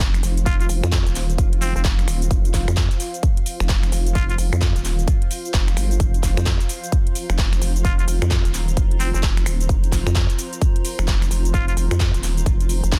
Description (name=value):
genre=bass house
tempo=130 BPM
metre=4/4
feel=swing 62% on 16ths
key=unclear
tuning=A4 = 440 Hz
part: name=vowel-sweep wobble bass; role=bass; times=0.0-13.0 s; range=Eb1 to F2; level=-23 LUFS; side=equal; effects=chorus, tube saturation, sidechain pumping
part: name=electronic kick drum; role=drums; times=0.0-13.0 s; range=none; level=-22 LUFS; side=equal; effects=small room ambience
part: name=house drum kit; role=drums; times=0.0-13.0 s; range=finger snaps, handclaps, hi-hat, shaker, snare drum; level=-30 LUFS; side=equal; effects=small room ambience
part: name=impact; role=sound effects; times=0.0-0.5 s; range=none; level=barely audible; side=none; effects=none
part: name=granular cloud pad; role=texture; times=0.2-13.0 s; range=F4 to Bb5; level=-35 LUFS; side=equal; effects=built-in reverb, sidechain pumping
part: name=trumpet with straight mute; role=melody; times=0.5-4.4, 7.8-11.7 s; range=C4 to F4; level=-32 LUFS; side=equal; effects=tape echo
room=little or no reverb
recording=dense, heavily limited modern master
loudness=-20 LUFS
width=mono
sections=0.0-13.0 A section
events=impact 0.0-0.5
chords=0.0 F5